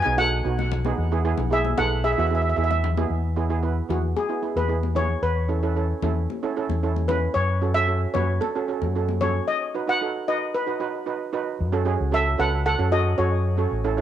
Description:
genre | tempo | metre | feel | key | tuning
calypso | 113 BPM | 4/4 | straight | E major | A4 = 438 Hz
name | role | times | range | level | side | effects
steel pan | melody | 0.0-13.6 s | F#4 to G#5 | -25 LUFS | equal | cassette tape, analog delay
steel pan | accompaniment | 0.1-14.0 s | B3 to B4 | -27 LUFS | right 7 dB | cassette tape
fingered electric bass | bass | 0.1-14.0 s | A1 to F#2 | -24 LUFS | left 1 dB | none
congas | percussion | 0.6-9.3 s | none | -33 LUFS | left 12 dB | none
room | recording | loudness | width
light reverb | home recording on cassette | -21 LUFS | side -10 dB against mid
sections
0.0-3.1 A section; 3.1-11.6 B section; 11.6-14.0 A section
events
steel pan solo 3.1-11.6; break 9.5-11.6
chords
0.0 B7; 1.0 E; 5.2 Aadd9/E; 7.4 F#m; 9.5 B; 11.6 F#m

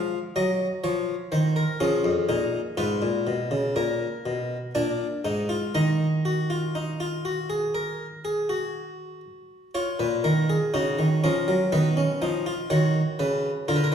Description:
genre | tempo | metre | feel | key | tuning
classical, baroque-style 3-part fugue for harpsichord | 61 BPM | 4/4 | straight | Eb minor | A4 = 441 Hz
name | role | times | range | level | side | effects
harpsichord | solo | 0.0-13.9 s | F2 to F5 | -23 LUFS | equal | none
room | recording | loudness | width
wet recital hall reverb, RT60 1.5 s | heard from further back in the room | -23 LUFS | side -8 dB against mid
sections
0.0-9.7 A section; 9.7-13.9 B section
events
none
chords
0.0 Db/F; 1.8 Fdim; 3.8 Bb5; 4.7 Bb7; 5.7 Ebm; 11.7 Db9

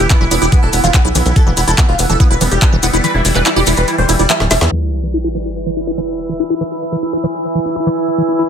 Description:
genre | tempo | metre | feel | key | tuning
psychedelic trance | 143 BPM | 4/4 | straight | E minor | A4 = 440 Hz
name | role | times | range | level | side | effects
supersaw stab | melody | 0.0-4.7 s | B3 to D5 | -18 LUFS | right 1 dB | phaser, sidechain pumping, low-pass filter, dub echo
overtone-sweeping drone | sustained chords | 0.0-8.5 s | E3 to E4 | -20 LUFS | right 1 dB | chorus, built-in reverb, sidechain pumping
tight sequencer bass | bass | 0.0-4.7 s | D1 to E2 | -16 LUFS | equal | none
drum and bass drum kit | drums | 0.0-4.7 s | handclaps, hi-hat, ride cymbal, snare drum | -18 LUFS | equal | overdrive
maracas | percussion | 0.0-4.7 s | none | -22 LUFS | left 5 dB | none
electronic kick drum | drums | 0.1-2.7 s | none | -11 LUFS | equal | none
liquid acid bass | riff | 0.2-8.4 s | E3 to E4 | -19 LUFS | moving between left 5 dB and right 4 dB | phaser, auto-pan, sidechain pumping, ping-pong delay
resonant blip pluck | second line | 0.3-0.9 s | D5 | -29 LUFS | right 7 dB | phaser, sidechain pumping, high-pass filter, digital delay
sub drop | sound effects | 4.7-6.4 s | none | -21 LUFS | equal | none
warbly tape-like pad | texture | 5.4-8.5 s | E4 to E6 | -22 LUFS | right 1 dB | chorus, built-in reverb, sidechain pumping
room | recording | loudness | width
light reverb | low-pass filter | -11 LUFS | side -8 dB against mid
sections
0.0-4.7 A section; 4.7-8.5 B section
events
drop 0.0-4.7; kick drops out 3.0-4.7; drum fill 4.4-4.7; band accent 4.6; impact 4.7-6.4; filter sweep 4.7-8.5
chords
0.0 E5

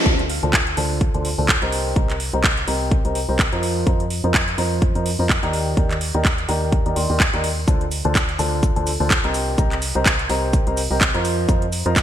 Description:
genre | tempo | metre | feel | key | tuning
piano house | 126 BPM | 4/4 | swing 56% on 16ths | unclear | A4 = 440 Hz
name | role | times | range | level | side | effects
clear upright piano | riff | 0.0-12.0 s | D3 to C6 | -23 LUFS | equal | sidechain pumping, low-pass filter, ping-pong delay
organ-like FM bass | bass | 0.1-12.0 s | C2 to F2 | -24 LUFS | equal | sidechain pumping
electronic kick drum | drums | 0.1-12.0 s | none | -20 LUFS | equal | none
house drum kit | drums | 0.1-12.0 s | handclaps, hi-hat | -22 LUFS | right 1 dB | gated reverb
dusty soul sampler-style drum kit | drums | 7.7-12.0 s | hi-hat, shaker, snare drum | -33 LUFS | right 1 dB | none
room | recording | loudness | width
light reverb | bright 1980s-style digital production | -17 LUFS | side -10 dB against mid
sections
0.1-12.0 A section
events
band accent 0.0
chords
0.1 Dm7; 1.7 Cm7; 3.6 F7sus4; 5.5 Ebmaj7; 7.7 Dm7; 9.3 Cm7; 11.2 F7sus4

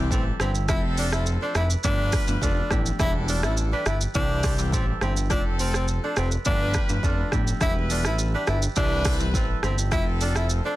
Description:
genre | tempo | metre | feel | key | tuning
afrobeats | 104 BPM | 4/4 | straight | C major | A4 = 438 Hz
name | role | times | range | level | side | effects
clear horn section | second line | 0.0-10.8 s | E3 to B4 | -35 LUFS | left 2 dB | none
buzzing marimba with medium mallets | accompaniment | 0.0-10.5 s | E3 to F4 | -33 LUFS | left 4 dB | none
kora | riff | 0.0-10.8 s | C4 to D5 | -34 LUFS | right 7 dB | digital delay
fat analog bass | bass | 0.0-10.6 s | E1 to C2 | -25 LUFS | equal | none
warm tenor saxophone | melody | 0.1-10.8 s | C4 to E4 | -29 LUFS | left 1 dB | digital delay
afro-pop drum kit | drums | 0.1-10.6 s | hi-hat, kick drum, rim click, shaker | -26 LUFS | equal | soft clipping on snare
room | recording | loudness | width
small room ambience | dense, heavily limited modern master | -21 LUFS | side -16 dB against mid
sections
0.0-10.8 A section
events
none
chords
0.0 C; 0.7 F; 1.8 G7; 3.0 Em7; 4.1 C; 5.3 F; 6.5 G7; 7.6 Em7; 8.8 C; 9.9 F

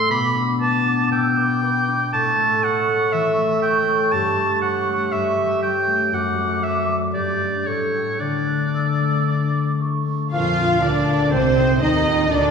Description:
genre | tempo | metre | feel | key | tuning
classical | 119 BPM | 4/4 | rubato | D major | A4 = 438 Hz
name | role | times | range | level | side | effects
bright oboe | second line | 0.0-12.5 s | C5 to B5 | -22 LUFS | right 2 dB | none
mellow clarinet | second line | 0.0-12.5 s | B3 to A4 | -25 LUFS | left 2 dB | none
mellow hollow small flute group | second line | 0.0-12.5 s | C5 to G6 | -26 LUFS | right 1 dB | none
concert harp | arpeggios | 0.0-12.5 s | F#2 to D5 | -24 LUFS | left 3 dB | none
warm symphonic violin section | melody | 10.3-12.5 s | C5 to F5 | -25 LUFS | left 2 dB | none
warm symphonic violin section | second line | 10.3-12.5 s | C4 to F4 | -27 LUFS | left 2 dB | none
rich symphonic viola section | accompaniment | 10.3-12.5 s | C4 to F4 | -25 LUFS | right 4 dB | none
dark French horn section | sustained chords | 10.3-12.5 s | C4 to F4 | -25 LUFS | left 1 dB | none
rich symphonic cello section | bass | 10.3-12.5 s | C3 to F3 | -24 LUFS | right 2 dB | none
rich symphonic double bass section | bass | 10.3-12.5 s | C2 to F2 | -24 LUFS | right 2 dB | none
room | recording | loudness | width
wet recital hall reverb, RT60 1.7 s | recorded in a church or concert hall | -17 LUFS | side -6 dB against mid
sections
0.0-10.3 A section; 10.3-12.5 B section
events
none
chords
0.1 G/B; 2.1 A; 4.1 A7/G; 6.1 D/F#; 7.1 G5; 7.7 A7; 8.2 D; 10.3 Bb/F; 11.3 F7/C

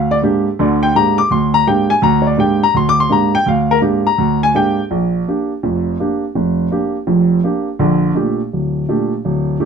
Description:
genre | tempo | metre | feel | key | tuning
jazz | 166 BPM | 4/4 | swing 64% on 8ths | Bb major from 4.9 s | A4 = 440 Hz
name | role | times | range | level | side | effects
warm baby grand piano | solo | 0.0-9.7 s | D1 to D6 | -13 LUFS | equal | none
room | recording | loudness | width
light reverb | none | -13 LUFS | side -6 dB against mid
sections
0.0-4.9 A section; 4.9-9.7 B section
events
none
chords
0.0 Gm; 4.9 Bb6; 7.8 Gsus2

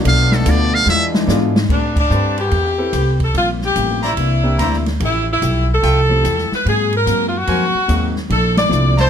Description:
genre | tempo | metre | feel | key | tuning
jazz, big band swing | 145 BPM | 4/4 | swing 65% on 8ths | A minor | A4 = 443 Hz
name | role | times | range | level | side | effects
clear grand piano | accompaniment | 0.0-9.1 s | F3 to D5 | -23 LUFS | right 1 dB | none
hollow-body jazz guitar | accompaniment | 0.0-9.0 s | G2 to B4 | -24 LUFS | left 7 dB | none
warm trombone section | sustained chords | 0.0-1.7 s | E3 to D4 | -24 LUFS | equal | none
upright bass | bass | 0.0-9.1 s | A1 to A2 | -17 LUFS | right 1 dB | none
open jazz drum kit | drums | 0.0-9.0 s | crash cymbal, hi-hat, kick drum, ride cymbal, snare drum | -23 LUFS | equal | none
trumpet with metal mute | melody | 0.1-1.1 s | A4 to F5 | -16 LUFS | right 1 dB | none
edgy saxophone section | melody | 1.7-9.1 s | D4 to D5 | -18 LUFS | left 1 dB | none
clear trumpet section | stabs | 2.1-9.1 s | E4 to Bb5 | -23 LUFS | equal | none
room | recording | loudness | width
light reverb | close, detailed microphones | -14 LUFS | side -8 dB against mid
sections
0.0-1.7 A section; 1.7-9.1 B section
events
muted trumpet solo 0.0-1.7; drum fill 0.9-1.7; band accent 1.9, 8.5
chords
0.0 Bm7b5; 0.9 E7b9; 1.7 Am9; 3.3 Gm11; 4.2 C9; 5.0 Fmaj9; 6.6 G#9; 8.3 Bbmaj9#11

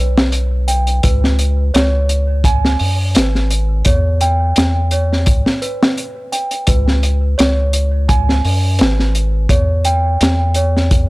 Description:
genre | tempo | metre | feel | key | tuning
trip hop | 85 BPM | 4/4 | straight | unclear | A4 = 445 Hz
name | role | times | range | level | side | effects
celesta | arpeggios | 0.0-11.1 s | B4 to G#5 | -21 LUFS | right 2 dB | vintage 12-bit sampler grit, analog delay
round analog bass | bass | 0.0-11.1 s | G#1 to F#2 | -15 LUFS | equal | none
crunchy breakbeat drum kit | drums | 0.2-11.1 s | hi-hat, kick drum, snare drum | -15 LUFS | equal | none
room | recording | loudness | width
studio ambience | dry, gritty hardware recording | -12 LUFS | side -21 dB against mid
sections
0.0-11.1 A section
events
none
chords
0.0 Em6 (rootless); 1.0 C#5; 3.9 Em6; 6.7 C#5; 9.5 Em6

